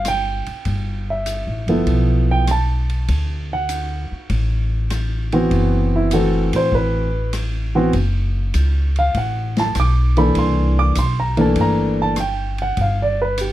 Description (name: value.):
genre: jazz piano trio.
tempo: 99 BPM.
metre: 4/4.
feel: swing 69% on 8ths.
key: unclear.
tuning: A4 = 440 Hz.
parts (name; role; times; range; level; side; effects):
warm baby grand piano; melody; 0.0-13.5 s; E3 to D6; -19 LUFS; right 1 dB; none.
upright bass; bass; 0.0-13.5 s; F#1 to A2; -19 LUFS; equal; none.
open jazz drum kit; drums; 0.0-13.5 s; hi-hat, kick drum, ride cymbal, rim click, snare drum; -29 LUFS; left 1 dB; none.
room: little or no reverb.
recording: dark, warm production.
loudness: -16 LUFS.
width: side -14 dB against mid.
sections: 0.0-13.5 A section.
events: none.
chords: 0.0 N.C.; 0.7 G13; 3.1 D13; 10.4 C13; 12.8 G7.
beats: 0.05 | 0.66 1.27 1.87 2.48 | 3.09 3.69 4.30 4.91 | 5.51 6.12 6.72 7.33 | 7.94 8.54 9.15 9.75 | 10.36 10.96 11.57 12.17 | 12.78 13.38.